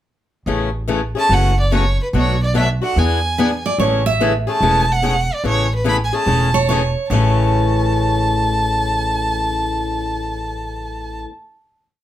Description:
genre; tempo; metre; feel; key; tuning
acoustic string swing (jazz manouche); 145 BPM; 4/4; swing 64% on 8ths; A major; A4 = 440 Hz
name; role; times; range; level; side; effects
picked swing-style acoustic guitar; accompaniment; 0.5-11.3 s; A2 to G#4; -21 LUFS; left 4 dB; none
upright bass; bass; 0.5-11.2 s; E1 to E2; -19 LUFS; equal; none
warm violin; melody; 1.2-11.2 s; B4 to B5; -20 LUFS; right 1 dB; none
picked steel-string acoustic guitar; second line; 3.4-11.2 s; B4 to E5; -22 LUFS; right 5 dB; none
room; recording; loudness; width
moderate studio reverb, RT60 0.5 s; none; -15 LUFS; side -12 dB against mid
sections
0.5-7.1 A section; 7.1-10.4 final chord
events
none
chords
0.5 Amaj7; 1.3 F#m7; 2.1 Bm7; 3.0 E7; 3.8 Amaj7; 7.1 A

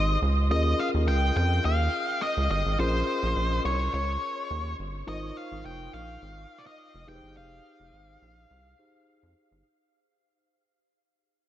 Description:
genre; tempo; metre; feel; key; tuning
early-eighties boogie funk; 105 BPM; 4/4; straight; F minor; A4 = 438 Hz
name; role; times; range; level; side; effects
octave-fuzz lead guitar; melody; 0.0-9.3 s; C5 to G5; -30 LUFS; left 1 dB; distortion, ping-pong delay
mellow tine electric piano; accompaniment; 0.0-9.7 s; Db4 to C5; -34 LUFS; left 2 dB; none
rubbery square bass; bass; 0.0-9.6 s; F1 to F2; -27 LUFS; equal; none
room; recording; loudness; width
moderate huge ambient reverb, RT60 8.7 s; dreamy mix soaked in reverb; -24 LUFS; side -12 dB against mid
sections
0.0-9.7 A section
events
fade-out 0.0-9.7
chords
0.0 Fm7 (rootless); 0.5 Eb7sus4; 2.8 Bbm9; 5.1 Ab6; 7.1 Fm7

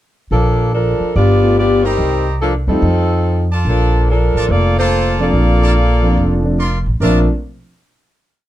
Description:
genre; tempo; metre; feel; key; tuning
jazz; 144 BPM; 4/4; swing 66% on 8ths; Bb major; A4 = 440 Hz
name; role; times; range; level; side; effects
mellow saxophone section; melody; 0.3-7.3 s; F3 to D5; -16 LUFS; left 1 dB; none
upright bass; bass; 0.3-7.3 s; F1 to F2; -15 LUFS; equal; none
warm concert grand piano; accompaniment; 1.4-7.3 s; F3 to A4; -18 LUFS; right 1 dB; none
brilliant trumpet section; stabs; 1.8-7.2 s; F4 to C6; -24 LUFS; right 2 dB; none
room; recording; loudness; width
moderate club reverb, RT60 0.6 s; dark, warm production; -12 LUFS; side -13 dB against mid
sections
0.3-7.0 A section; 7.0-8.5 final chord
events
none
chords
0.3 Bbmaj7; 1.1 G7; 2.0 Cm7; 2.8 F7; 3.7 Bbmaj7

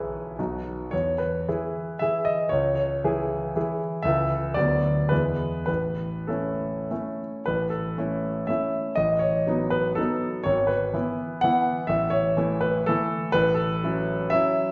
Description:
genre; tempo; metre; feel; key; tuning
classical, romantic triple-time dance for piano with dotted rhythms; 96-133 BPM; 3/4; rubato; A major from 4.0 s; A4 = 441 Hz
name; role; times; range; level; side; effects
clear concert grand piano; solo; 0.0-14.7 s; G#1 to F#5; -25 LUFS; equal; none
room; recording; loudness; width
wet recital hall reverb, RT60 1.4 s; heard from further back in the room, nothing above 7.8 kHz; -25 LUFS; mono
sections
0.0-7.5 A section; 7.5-14.7 B section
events
none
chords
0.4 B; 0.9 E; 2.5 C#m; 4.0 A/C#; 4.6 Bm/D; 5.1 E; 5.7 A; 9.0 B7/A; 10.5 E/G#; 11.9 A; 13.3 F#m7/A

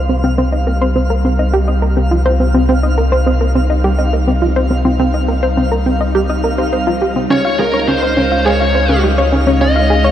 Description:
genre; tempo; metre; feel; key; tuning
ambient, sequencer-driven space music; 104 BPM; 4/4; straight; C phrygian; A4 = 440 Hz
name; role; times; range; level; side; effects
phased string machine; sustained chords; 0.0-10.1 s; G3 to Eb5; -23 LUFS; equal; ensemble chorus, phaser, shimmer reverb
analog pluck; riff; 0.0-10.1 s; C4 to F5; -15 LUFS; equal; chorus, shimmer reverb, tape echo
warm sub bass; bass; 0.0-10.1 s; C2 to Db2; -16 LUFS; equal; none
twinkling granular texture; texture; 0.0-10.1 s; F5; -24 LUFS; left 1 dB; built-in reverb, shimmer reverb
high-gain lead guitar; melody; 7.3-10.1 s; Bb4 to Eb5; -16 LUFS; equal; distortion, shimmer reverb, tape echo
room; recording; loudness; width
wet lush hall reverb, RT60 2.6 s; dark, warm production; -11 LUFS; side -10 dB against mid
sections
0.0-10.1 A section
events
fade-in on string machine 0.0-10.1; filter sweep on synth arpeggio sound 0.0-10.1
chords
0.0 Cm; 7.3 Dbsus2

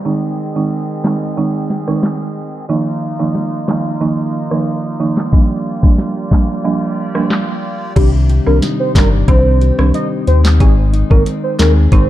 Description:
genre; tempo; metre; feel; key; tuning
dancehall; 91 BPM; 4/4; straight; C minor; A4 = 435 Hz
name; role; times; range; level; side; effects
folk marimba with medium mallets; accompaniment; 0.0-12.1 s; Eb3 to Eb4; -17 LUFS; right 3 dB; none
accordion; sustained chords; 0.0-7.9 s; Eb3 to Eb5; -26 LUFS; left 1 dB; light tremolo tuning
afro-pop drum kit; drums; 1.0-12.1 s; crash cymbal, handclaps, hi-hat, kick drum, rim click, snare drum; -14 LUFS; equal; none
warm velvety synth lead; melody; 8.0-12.1 s; G4 to Eb5; -19 LUFS; equal; chorus, digital delay
fingerpicked steel-string acoustic guitar; arpeggios; 8.0-12.1 s; C3 to D5; -21 LUFS; left 9 dB; none
sub bass with octave; bass; 8.0-12.1 s; G1 to Eb2; -12 LUFS; equal; none
room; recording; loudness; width
little or no reverb; dark, warm production, low-pass filter; -12 LUFS; side -14 dB against mid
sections
0.0-8.0 A section; 8.0-12.1 B section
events
filter sweep 0.0-8.0; break 6.6-8.0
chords
0.1 Ab; 2.7 Bbsus4; 5.3 Gm7; 8.0 Cmadd9; 10.6 Ab

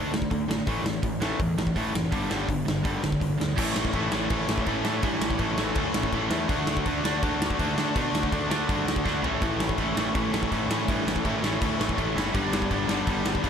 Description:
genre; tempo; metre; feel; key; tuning
punk rock; 164 BPM; 4/4; straight; A mixolydian; A4 = 440 Hz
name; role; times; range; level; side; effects
biting overdriven guitar; riff; 0.0-13.5 s; G2 to D4; -29 LUFS; right 9 dB; none
distorted electric guitar; riff; 0.0-13.5 s; G2 to F#4; -29 LUFS; left 10 dB; overdrive
fuzz picked electric bass; bass; 0.0-13.5 s; F#1 to D3; -33 LUFS; equal; overdrive
big rock drum kit; drums; 0.1-13.5 s; crash cymbal, hi-hat, kick drum, snare drum, toms; -29 LUFS; equal; none
biting overdriven guitar; riff; 3.6-13.5 s; G2 to D4; -34 LUFS; equal; none
room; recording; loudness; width
light reverb; none; -24 LUFS; side -7 dB against mid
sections
0.0-3.6 A section; 3.6-13.5 B section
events
drum fill 9.1-9.4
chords
0.0 D5; 0.7 A5; 2.1 G5; 3.6 A; 6.5 D; 9.2 A; 12.3 G

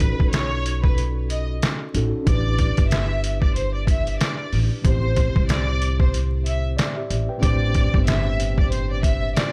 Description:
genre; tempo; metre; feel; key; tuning
hip hop, boom-bap hip-hop; 93 BPM; 4/4; swing 58% on 16ths; A minor; A4 = 440 Hz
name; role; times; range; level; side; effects
rich studio violin section; melody; 0.0-9.5 s; B4 to E5; -31 LUFS; equal; high-pass filter, low-pass filter
mellow tine electric piano; accompaniment; 0.0-9.5 s; A2 to G5; -31 LUFS; equal; cassette tape, high-pass filter, low-pass filter
upright bass; bass; 0.0-9.3 s; G1 to C2; -26 LUFS; equal; none
trip hop sampler-style drum kit; drums; 0.0-9.5 s; hi-hat, kick drum, snare drum; -23 LUFS; equal; none
room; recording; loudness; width
digital ambience; vinyl crackle; -21 LUFS; mono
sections
0.0-9.5 A section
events
none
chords
0.0 B7/A; 2.3 Em7; 4.8 Am7; 7.4 Csus2

